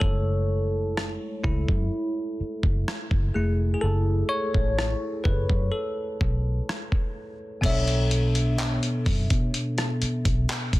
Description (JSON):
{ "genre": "contemporary R&B", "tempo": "63 BPM", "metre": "4/4", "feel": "straight", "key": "B dorian", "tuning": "A4 = 438 Hz", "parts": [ { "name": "bell-like tine electric piano", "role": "accompaniment", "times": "0.0-10.8 s", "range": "B2 to E5", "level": "-28 LUFS", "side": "equal", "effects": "phaser" }, { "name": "vintage muted fingered electric bass", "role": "bass", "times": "0.0-10.8 s", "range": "E#1 to B2", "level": "-26 LUFS", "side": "equal", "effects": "none" }, { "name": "dusty soul sampler-style drum kit", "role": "drums", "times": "0.0-10.8 s", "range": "crash cymbal, handclaps, hi-hat, kick drum, rim click", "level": "-26 LUFS", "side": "equal", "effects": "overdrive" } ], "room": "digital ambience", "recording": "dense, heavily limited modern master", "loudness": "-23 LUFS", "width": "side -18 dB against mid", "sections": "0.0-7.6 A section; 7.6-10.8 B section", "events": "tine electric piano solo 0.0-7.6", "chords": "0.0 F#m7; 7.6 Bm11", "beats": "| 0.02 0.97 1.92 2.87 | 3.83 4.78 5.73 6.68 | 7.63 8.59 9.54 10.49" }